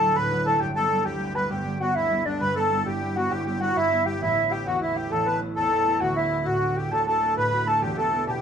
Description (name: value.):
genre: celtic folk, Celtic slide.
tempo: 133 BPM (dotted quarters).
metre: 12/8.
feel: straight.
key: D major.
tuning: A4 = 440 Hz.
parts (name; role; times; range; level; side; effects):
mellow wooden flute; melody; 0.0-8.4 s; D5 to B5; -24 LUFS; equal; none.
accordion; second line; 0.0-8.4 s; D4 to B4; -26 LUFS; equal; light tremolo tuning.
concert harp; accompaniment; 0.0-8.4 s; D1 to G4; -28 LUFS; right 1 dB; none.
room: moderate studio reverb, RT60 0.5 s.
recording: band playing live in one room.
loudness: -22 LUFS.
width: side -8 dB against mid.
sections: 0.0-8.4 A section.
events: none.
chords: 0.0 Dadd9; 0.6 G; 2.4 Em/G; 4.2 A; 6.0 D; 7.8 Em.